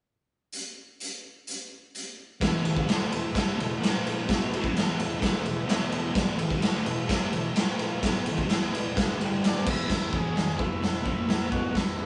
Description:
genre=garage rock duo or trio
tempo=128 BPM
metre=4/4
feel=straight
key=E mixolydian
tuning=A4 = 441 Hz
part: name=raw garage drum kit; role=drums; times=0.5-12.1 s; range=crash cymbal, hi-hat, kick drum, ride cymbal, snare drum, toms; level=-29 LUFS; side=equal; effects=none
part: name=overdriven combo organ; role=sustained chords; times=2.4-12.1 s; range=A#3 to G#5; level=-43 LUFS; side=equal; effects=none
part: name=thick fuzz guitar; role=riff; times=2.4-11.8 s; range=E2 to E4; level=-33 LUFS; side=equal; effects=distortion
part: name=overdriven combo organ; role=melody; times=9.5-12.1 s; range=D4 to G#4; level=-38 LUFS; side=equal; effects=none
room=light reverb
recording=band playing live in one room, nothing above 10.4 kHz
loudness=-27 LUFS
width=mono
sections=0.5-2.4 A section; 2.4-9.9 B section; 9.9-12.1 C section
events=transistor combo organ fill 9.0-9.9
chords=0.5 N.C.; 2.4 E; 3.8 A#5; 4.3 E; 7.6 A#5; 8.0 E; 9.2 G5; 9.7 E; 11.1 A#5; 11.5 E

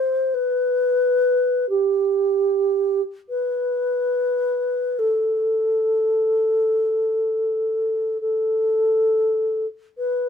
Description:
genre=classical, free, expressive piece for unaccompanied alto flute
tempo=27-48 BPM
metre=4/4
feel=rubato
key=A minor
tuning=A4 = 440 Hz
part: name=mellow wooden-headed alto flute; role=solo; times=0.0-10.3 s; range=G4 to C5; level=-19 LUFS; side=equal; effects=none
room=moderate studio reverb, RT60 0.7 s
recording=none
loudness=-19 LUFS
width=side -7 dB against mid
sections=0.0-10.0 A section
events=none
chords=none

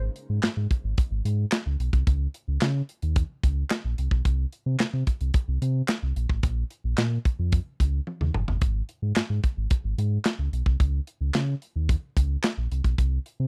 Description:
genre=early-eighties boogie funk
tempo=110 BPM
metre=4/4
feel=straight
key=Db major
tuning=A4 = 440 Hz
part: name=sub bass with octave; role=bass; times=0.0-13.5 s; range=Gb1 to Db3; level=-28 LUFS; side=equal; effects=none
part: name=modern studio drum kit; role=drums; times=0.2-13.4 s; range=handclaps, hi-hat, kick drum, snare drum, toms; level=-26 LUFS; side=equal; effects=none
room=little or no reverb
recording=dry, close 1970s-style studio recording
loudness=-26 LUFS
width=mono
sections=0.0-13.5 A section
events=drum fill 8.1-8.6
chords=none

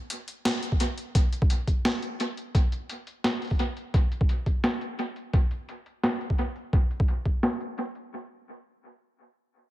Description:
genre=half-time drum and bass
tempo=172 BPM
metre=4/4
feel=swing 54% on 16ths, half-time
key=none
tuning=none
part: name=boom bap sampler-style drum kit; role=drums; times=0.1-8.0 s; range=hi-hat, snare drum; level=-29 LUFS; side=equal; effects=overdrive, low-pass filter on hats, low-pass filter on perc, low-pass filter on snare, low-pass filter on room, dub echo
part: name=electronic kick drum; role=drums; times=0.7-7.3 s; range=none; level=-23 LUFS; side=equal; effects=overdrive
room=little or no reverb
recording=echo-heavy mix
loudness=-25 LUFS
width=side -15 dB against mid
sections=0.0-8.1 A section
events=filter sweep on drum 0.0-8.1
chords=none

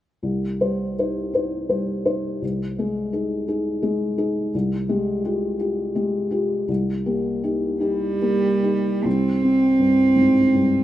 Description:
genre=neoclassical piano and strings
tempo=46-57 BPM (dotted quarters)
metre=6/8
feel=rubato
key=C minor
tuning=A4 = 445 Hz
part: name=felt-muted upright piano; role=accompaniment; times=0.2-10.8 s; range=C2 to C5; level=-22 LUFS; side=left 2 dB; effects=none
part: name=warm cello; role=second line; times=7.8-10.8 s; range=G3 to C4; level=-18 LUFS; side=right 2 dB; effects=none
room=moderate lush hall reverb, RT60 2.3 s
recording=rough home demo mix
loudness=-19 LUFS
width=side -13 dB against mid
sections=0.2-9.1 A section; 9.1-10.8 B section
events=none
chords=0.2 Cm; 2.4 Ab/C; 4.5 Fmadd9/C; 6.7 Eb/C; 9.1 C5

